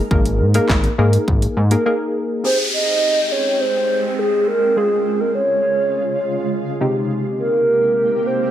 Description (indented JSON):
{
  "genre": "dance-pop",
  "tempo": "103 BPM",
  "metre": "4/4",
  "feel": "straight",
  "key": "Ab major",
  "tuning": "A4 = 440 Hz",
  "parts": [
    { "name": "funky polysynth comp", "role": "accompaniment", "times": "0.0-8.5 s", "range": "C3 to Bb4", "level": "-22 LUFS", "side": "left 1 dB", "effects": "chorus, sidechain pumping" },
    { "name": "shimmering ambient pad", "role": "sustained chords", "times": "0.0-8.5 s", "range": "C3 to G5", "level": "-26 LUFS", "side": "right 4 dB", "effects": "chorus, built-in reverb, sidechain pumping" },
    { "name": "chorused synth bass", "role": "bass", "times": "0.1-1.8 s", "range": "Ab1 to Ab2", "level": "-16 LUFS", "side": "equal", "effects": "sidechain pumping" },
    { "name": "pop drum kit", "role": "drums", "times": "0.1-1.8 s", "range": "handclaps, hi-hat, kick drum, snare drum", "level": "-19 LUFS", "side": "equal", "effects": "none" },
    { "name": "hollow clarinet-like synth lead", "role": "melody", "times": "2.4-8.5 s", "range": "Ab4 to Eb5", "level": "-17 LUFS", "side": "right 1 dB", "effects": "chorus, tape echo" },
    { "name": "downlifter", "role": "sound effects", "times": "2.4-7.1 s", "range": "none", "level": "-24 LUFS", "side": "left 1 dB", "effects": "none" }
  ],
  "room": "light reverb",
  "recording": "none",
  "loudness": "-15 LUFS",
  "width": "side -11 dB against mid",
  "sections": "0.1-2.4 A section; 2.4-8.5 B section",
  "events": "break 1.9-2.4",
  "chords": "0.1 Absus2; 2.4 Abmaj7; 4.8 Db; 6.8 Abmaj7/C"
}